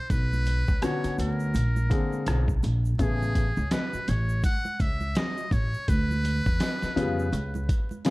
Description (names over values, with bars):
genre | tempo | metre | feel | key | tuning
hip hop, jazz-hop | 83 BPM | 4/4 | swing 60% on 16ths | unclear | A4 = 440 Hz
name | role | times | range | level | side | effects
trumpet with metal mute | melody | 0.0-8.1 s | G#4 to F#5 | -33 LUFS | equal | none
upright bass | bass | 0.1-7.7 s | A1 to F2 | -27 LUFS | equal | none
boom bap sampler-style drum kit | drums | 0.1-8.1 s | hi-hat, kick drum, rim click, snare drum | -27 LUFS | equal | none
tube shaker and congas | percussion | 0.1-8.1 s | none | -41 LUFS | right 3 dB | none
warm grand piano | accompaniment | 0.8-8.1 s | C#3 to Ab4 | -29 LUFS | left 2 dB | none
room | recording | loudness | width
small room ambience | dark, warm production, vinyl crackle | -24 LUFS | side -20 dB against mid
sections
0.0-8.1 A section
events
none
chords
0.1 Bmadd9; 1.5 Bb9; 3.0 Amaj9; 5.9 Dm; 7.3 C#7(no3)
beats
| 0.10 0.82 1.55 2.27 | 2.99 3.71 4.44 5.16 | 5.88 6.61 7.33 8.05